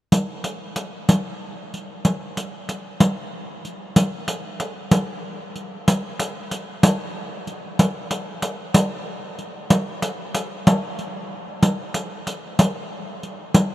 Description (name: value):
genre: arabic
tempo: 63 BPM (dotted quarters)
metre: 6/8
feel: straight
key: none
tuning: none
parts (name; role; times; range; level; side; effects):
- riq; percussion; 0.1-13.7 s; none; -20 LUFS; equal; none
room: moderate huge ambient reverb, RT60 8.3 s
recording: in a vast, echoing space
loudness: -20 LUFS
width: side -15 dB against mid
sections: 0.1-4.0 A section; 4.0-13.7 B section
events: none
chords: none